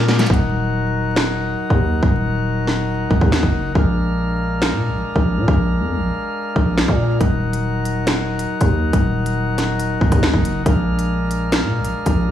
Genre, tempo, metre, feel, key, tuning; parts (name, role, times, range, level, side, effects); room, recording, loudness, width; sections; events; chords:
hip hop, drill; 139 BPM; 4/4; half-time; Eb harmonic minor; A4 = 440 Hz
pipe organ, sparkling flutes; sustained chords; 0.0-12.3 s; Gb3 to Gb5; -22 LUFS; left 2 dB
growling 808-style bass; bass; 0.0-12.3 s; Eb1 to Bb2; -20 LUFS; equal
drill drum kit; drums; 0.1-12.2 s; finger snaps, hi-hat, kick drum, snare drum; -18 LUFS; equal
light reverb; vinyl crackle, studio reverb; -16 LUFS; side -11 dB against mid
0.3-12.3 A section
drum fill 0.0-0.3; break 0.3-7.2
0.3 Ebm; 3.8 Bb7; 7.2 Ebm; 10.7 Bb7